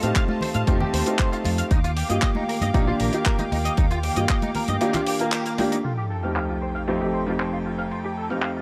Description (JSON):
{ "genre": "nu-disco, nu disco", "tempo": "116 BPM", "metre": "4/4", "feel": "straight", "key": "F mixolydian", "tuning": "A4 = 439 Hz", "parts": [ { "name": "warm grand piano", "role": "accompaniment", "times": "0.0-8.6 s", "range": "F2 to Bb4", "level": "-28 LUFS", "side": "equal", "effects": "low-pass filter, analog delay" }, { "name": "dark studio string section", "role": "sustained chords", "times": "0.0-8.6 s", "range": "Eb3 to D6", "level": "-34 LUFS", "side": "equal", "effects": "sidechain pumping" }, { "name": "direct-recorded clean electric guitar", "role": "riff", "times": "0.0-8.6 s", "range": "Bb3 to F5", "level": "-33 LUFS", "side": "equal", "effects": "ensemble chorus, low-pass filter, analog delay" }, { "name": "fingered electric bass with an envelope filter", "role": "bass", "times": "0.0-4.8 s", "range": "F1 to A2", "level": "-28 LUFS", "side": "equal", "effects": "tube saturation" }, { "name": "damped 70s drum kit", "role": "drums", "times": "0.0-8.5 s", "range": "handclaps, hi-hat", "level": "-32 LUFS", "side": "equal", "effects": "low-pass filter on hats, low-pass filter on snare, low-pass filter on room" }, { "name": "electronic kick drum", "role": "drums", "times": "0.2-4.4 s", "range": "none", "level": "-24 LUFS", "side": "equal", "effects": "none" }, { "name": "congas", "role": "percussion", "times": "0.3-5.7 s", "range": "none", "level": "-34 LUFS", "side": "equal", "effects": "none" }, { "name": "sub drop", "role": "sound effects", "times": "5.8-7.9 s", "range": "none", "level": "-34 LUFS", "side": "equal", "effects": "none" } ], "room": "little or no reverb", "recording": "dry, gritty hardware recording, transformer saturation", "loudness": "-23 LUFS", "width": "mono", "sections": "0.0-5.8 A section; 5.8-8.6 B section", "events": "band accent 5.3; impact 5.8-7.9; filter sweep on drum 5.8-8.6; filter sweep on grand piano 5.8-8.6", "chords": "0.0 F9; 1.7 Ebmaj9; 5.8 F9", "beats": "0.16 0.68 1.19 | 1.71 2.23 2.75 3.26 | 3.78 4.30 4.81 5.33 | 5.85 6.37 6.88 7.40 | 7.92 8.44" }